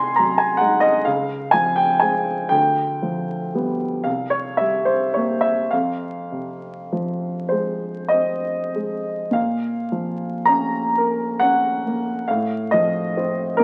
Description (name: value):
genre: classical, romantic nocturne for solo piano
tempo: 31-46 BPM (dotted quarters)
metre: 6/8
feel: rubato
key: F minor, Bb minor from 9.4 s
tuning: A4 = 440 Hz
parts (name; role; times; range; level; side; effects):
- warm baby grand piano; solo; 0.0-13.6 s; C2 to C6; -21 LUFS; equal; none
room: moderate stone room reverb, RT60 1.1 s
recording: very old 78 rpm record, vinyl crackle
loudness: -21 LUFS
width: mono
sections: 0.0-9.4 A section; 9.4-13.6 B section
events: none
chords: 0.0 Ab7/C; 1.1 Dbmaj7; 2.5 G7/D; 4.1 C5; 5.7 Fm; 9.4 Bbm; 12.3 F7/A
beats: 1.06 | 2.52 4.05 | 5.71 7.50 | 9.35 10.96 | 12.28 13.60